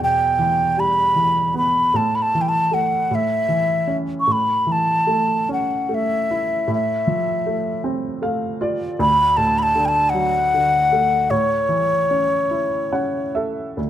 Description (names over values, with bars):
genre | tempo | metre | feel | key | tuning
celtic folk | 48-53 BPM (dotted quarters) | 6/8 | rubato | unclear | A4 = 442 Hz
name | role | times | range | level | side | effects
baroque flute | melody | 0.0-13.4 s | C#5 to C#6 | -18 LUFS | left 1 dB | none
warm upright piano | accompaniment | 0.0-13.9 s | D2 to F#5 | -23 LUFS | right 1 dB | none
room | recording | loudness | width
light reverb | close, detailed microphones | -17 LUFS | side -11 dB against mid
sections
0.0-13.8 A section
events
upright piano fill 7.8-9.0, 12.5-13.8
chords
0.0 Em; 1.9 A5; 3.1 A; 6.7 F/A; 9.0 D; 11.3 A